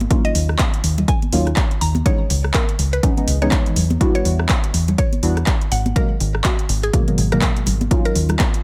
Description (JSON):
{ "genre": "deep house", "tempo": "123 BPM", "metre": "4/4", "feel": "swing 58% on 16ths", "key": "C# dorian", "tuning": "A4 = 438 Hz", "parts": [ { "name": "deep mellow chord stab", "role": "stabs", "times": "0.0-8.6 s", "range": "B2 to F#4", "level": "-25 LUFS", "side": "equal", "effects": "chorus, phaser, vintage 12-bit sampler grit, sidechain pumping, tape echo" }, { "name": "deep dub fingered electric bass", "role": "bass", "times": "0.0-8.3 s", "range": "G#1 to E2", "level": "-21 LUFS", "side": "equal", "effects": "sidechain pumping" }, { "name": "deep house drum kit", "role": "drums", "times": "0.0-8.6 s", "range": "handclaps, hi-hat, rim click", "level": "-26 LUFS", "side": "equal", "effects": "overdrive" }, { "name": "congas", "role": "percussion", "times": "0.0-8.5 s", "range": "none", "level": "-28 LUFS", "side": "equal", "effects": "none" }, { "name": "electronic kick drum", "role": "drums", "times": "0.1-8.5 s", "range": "none", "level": "-21 LUFS", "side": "equal", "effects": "overdrive" }, { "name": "mallet-like synth pluck", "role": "melody", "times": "0.2-8.4 s", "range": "F#4 to A#5", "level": "-30 LUFS", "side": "equal", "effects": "chorus, delay" } ], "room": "little or no reverb", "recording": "none", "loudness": "-18 LUFS", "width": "mono", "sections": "0.0-8.6 A section", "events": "none", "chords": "0.1 D#m9; 2.1 C#m9; 3.8 Em9; 5.7 G#m9; 7.9 D#m9", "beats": "| 0.11 0.59 1.08 1.57 | 2.06 2.54 3.03 3.52 | 4.01 4.50 4.98 5.47 | 5.96 6.45 6.93 7.42 | 7.91 8.40" }